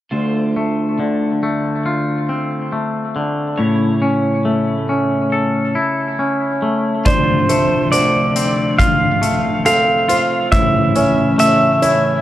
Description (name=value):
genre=post-rock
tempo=69 BPM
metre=4/4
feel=straight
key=D minor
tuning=A4 = 441 Hz
part: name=pedal steel guitar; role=sustained chords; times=0.1-12.2 s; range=C3 to C#5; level=-23 LUFS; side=right 2 dB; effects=lush chorus
part: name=twangy electric guitar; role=arpeggios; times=0.1-12.2 s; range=D2 to A4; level=-17 LUFS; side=left 1 dB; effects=tape echo
part: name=clean lap steel guitar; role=melody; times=7.1-12.2 s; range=C5 to F5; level=-16 LUFS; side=right 1 dB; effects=tape echo
part: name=felt-muted upright piano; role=arpeggios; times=7.1-12.2 s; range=A4 to D5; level=-22 LUFS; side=right 2 dB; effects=tape echo
part: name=big rock drum kit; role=drums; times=7.1-12.0 s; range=hi-hat, kick drum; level=-20 LUFS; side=equal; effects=none
room=light reverb, studio reverb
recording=dark, warm production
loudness=-14 LUFS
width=side -13 dB against mid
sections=0.1-7.1 A section; 7.1-12.2 B section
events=none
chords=0.1 Dm7; 3.6 A; 7.1 Dm7; 10.5 A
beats=| 0.13 1.00 1.86 2.73 | 3.60 4.46 5.33 6.19 | 7.06 7.93 8.79 9.66 | 10.53 11.39